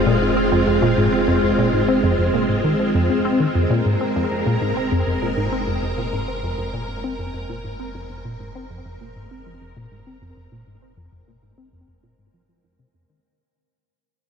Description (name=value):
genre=ambient, sequencer-driven space music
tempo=99 BPM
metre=4/4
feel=straight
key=F minor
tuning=A4 = 440 Hz
part: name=string machine, full ensemble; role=sustained chords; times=0.0-13.2 s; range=Ab3 to Bb4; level=-21 LUFS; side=equal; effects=ensemble chorus
part: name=tight sequenced synth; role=riff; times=0.0-13.2 s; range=F2 to C4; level=-22 LUFS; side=equal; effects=chorus, phaser, analog delay
part: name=round analog bass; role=bass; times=0.0-13.2 s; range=F1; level=-34 LUFS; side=equal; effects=none
room=wet lush hall reverb, RT60 2.6 s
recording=none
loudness=-18 LUFS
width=side -6 dB against mid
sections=0.0-13.2 A section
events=fade-out 0.0-13.2; filter sweep on synth arpeggio sound 0.0-13.2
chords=0.0 Fm